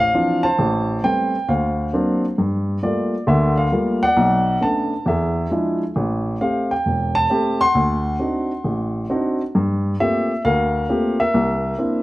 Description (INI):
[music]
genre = solo jazz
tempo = 134 BPM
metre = 4/4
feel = swing 65% on 8ths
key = unclear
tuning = A4 = 445 Hz
[part]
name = dark baby grand piano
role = solo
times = 0.0-12.0 s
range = E1 to C6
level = -17 LUFS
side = equal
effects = none
[sound]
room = moderate large studio reverb, RT60 1.4 s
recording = none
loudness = -17 LUFS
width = side -17 dB against mid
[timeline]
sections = 0.0-12.0 A section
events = none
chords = 0.0 Dm9; 0.6 Am9; 1.5 D7alt; 2.4 Gm9; 4.2 Bm9; 5.1 E7b9; 6.0 Am7; 7.8 D7b9; 9.5 Gm11; 11.3 C9